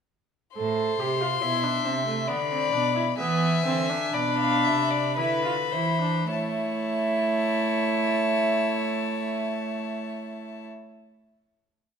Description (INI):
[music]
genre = classical, baroque-style fugue for string quartet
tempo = 50-71 BPM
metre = 3/4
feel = straight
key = A minor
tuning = A4 = 442 Hz
[part]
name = rich violin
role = melody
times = 0.6-10.7 s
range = G#5 to C6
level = -29 LUFS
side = left 9 dB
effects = none
[part]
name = rich violin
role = second line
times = 0.6-10.7 s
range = B4 to F5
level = -30 LUFS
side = left 4 dB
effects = none
[part]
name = warm viola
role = accompaniment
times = 0.6-10.7 s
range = A3 to A4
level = -28 LUFS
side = right 2 dB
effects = none
[part]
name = warm cello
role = bass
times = 0.6-10.7 s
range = A2 to A3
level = -29 LUFS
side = right 4 dB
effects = none
[sound]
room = wet recital hall reverb, RT60 1.4 s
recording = minimal, uncompressed stereo recording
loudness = -23 LUFS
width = side -7 dB against mid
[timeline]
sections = 0.6-6.3 exposition; 6.3-9.9 final chord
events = slowing down 0.6-8.1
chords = 0.6 Am; 2.3 Bm; 3.2 E7; 6.3 A